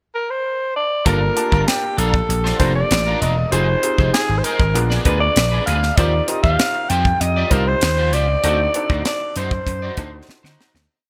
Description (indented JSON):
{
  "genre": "polished 1980s jazz-funk pop",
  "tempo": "98 BPM",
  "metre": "4/4",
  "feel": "straight",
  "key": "G minor",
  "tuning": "A4 = 444 Hz",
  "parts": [
    { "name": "growling alto saxophone", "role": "melody", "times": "0.1-10.3 s", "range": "G4 to G5", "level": "-23 LUFS", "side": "equal", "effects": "none" },
    { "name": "clear grand piano", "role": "accompaniment", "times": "1.1-10.9 s", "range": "Bb3 to A5", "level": "-29 LUFS", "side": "equal", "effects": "subtle chorus" },
    { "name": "electric guitar at the edge of break-up", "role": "riff", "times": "1.1-10.8 s", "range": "D4 to D5", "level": "-30 LUFS", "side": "equal", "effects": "ensemble chorus" },
    { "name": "vintage slap bass", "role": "bass", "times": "1.1-10.9 s", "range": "E1 to D3", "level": "-22 LUFS", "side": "equal", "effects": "none" },
    { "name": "tight funk drum kit", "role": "drums", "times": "1.1-10.9 s", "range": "hi-hat, kick drum, snare drum", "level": "-23 LUFS", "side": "equal", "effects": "none" }
  ],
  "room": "light reverb, studio reverb",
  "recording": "bright 1980s-style digital production",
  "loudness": "-18 LUFS",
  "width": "mono",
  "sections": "0.0-1.1 pickup bar; 1.1-10.9 verse",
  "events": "fade-out 8.4-10.9; drum fill 10.3-10.9",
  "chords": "0.0 N.C.; 1.1 Gm7; 3.5 Fm7; 4.8 Bb7b9; 6.0 Eb69; 8.4 D7b9"
}